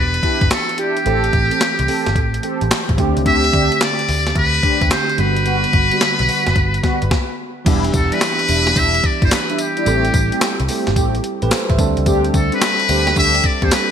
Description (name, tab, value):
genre	R&B, new jack swing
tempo	109 BPM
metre	4/4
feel	swing 66% on 16ths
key	E minor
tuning	A4 = 442 Hz
part	trumpet with metal mute	melody	0.0-13.9 s	G4 to E5	-18 LUFS	left 2 dB	none
part	bell-like tine electric piano	accompaniment	0.0-13.9 s	D3 to E5	-24 LUFS	right 5 dB	none
part	vintage muted picked electric bass	bass	0.0-13.7 s	E1 to E2	-20 LUFS	equal	none
part	clean 12-bit digital drum machine	drums	0.1-13.9 s	crash cymbal, handclaps, hi-hat, kick drum, snare drum, tambourine	-19 LUFS	equal	gated reverb
part	mellow synth brass	stabs	0.2-13.7 s	G3 to A4	-23 LUFS	equal	chorus
room	moderate lush hall reverb, RT60 2.2 s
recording	bright 1980s-style digital production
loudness	-14 LUFS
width	side -8 dB against mid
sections	0.0-7.7 A section; 7.7-13.9 B section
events	stop 7.1-7.7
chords	0.0 Em7; 1.1 Am7; 3.0 D7sus4; 5.2 Gmaj7; 7.7 Em7; 9.9 Am7; 11.8 D7sus4